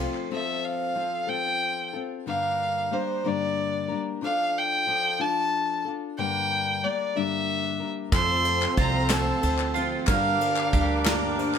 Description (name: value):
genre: indie folk with a building arrangement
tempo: 61 BPM (dotted quarters)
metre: 6/8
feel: straight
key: F major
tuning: A4 = 440 Hz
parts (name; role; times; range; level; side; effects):
- dark fiddle; melody; 0.0-11.3 s; C5 to C6; -26 LUFS; equal; none
- warm trombone; second line; 0.0-0.3, 8.1-11.6 s; C4 to D4; -30 LUFS; right 7 dB; none
- felt-muted upright piano; accompaniment; 0.0-0.3, 8.1-11.6 s; F1 to D5; -36 LUFS; left 8 dB; none
- picked steel-string acoustic guitar; accompaniment; 0.0-11.6 s; G2 to Bb4; -31 LUFS; left 8 dB; none
- warm chamber string section; sustained chords; 0.0-0.3, 8.1-11.6 s; A3 to D6; -37 LUFS; left 2 dB; none
- mandolin; arpeggios; 0.0-0.3, 8.1-11.6 s; F4 to Bb4; -31 LUFS; right 7 dB; slapback echo
- upright bass; bass; 0.0-0.1, 8.1-11.6 s; C2 to G2; -29 LUFS; right 1 dB; none
- group handclap; percussion; 0.1-0.2, 8.1-11.6 s; none; -33 LUFS; left 8 dB; none
- soft brush drum kit; drums; 8.1-11.5 s; kick drum, ride cymbal, snare drum; -29 LUFS; equal; none
room: moderate large studio reverb, RT60 0.8 s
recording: none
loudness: -23 LUFS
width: side -8 dB against mid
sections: 0.3-11.6 A section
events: none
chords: 0.3 F; 2.3 Gm; 4.2 Dm/F; 6.2 Gm; 8.1 F; 10.1 Gm